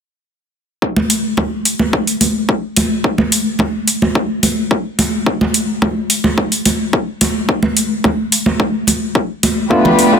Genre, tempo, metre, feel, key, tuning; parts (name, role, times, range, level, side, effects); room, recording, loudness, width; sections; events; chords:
nu-disco, nu disco; 108 BPM; 4/4; straight; A4 = 438 Hz
electronic kick drum; drums; 0.8-9.8 s; -16 LUFS; left 1 dB; overdrive, high-pass filter on kick, high-pass filter on room
congas; percussion; 1.0-10.0 s; -16 LUFS; equal
electronic hi-hat; drums; 1.1-10.1 s; -16 LUFS; equal; overdrive
tine electric piano; accompaniment; 9.7-10.2 s; A3 to F4; -10 LUFS; right 1 dB; overdrive, sidechain pumping
dark studio violin section; sustained chords; 9.7-10.2 s; G3 to B4; -14 LUFS; left 4 dB; sidechain pumping
moderate echo chamber reverb, RT60 1.6 s, digital ambience; dense, heavily limited modern master; -13 LUFS; side -7 dB against mid
0.8-10.2 A section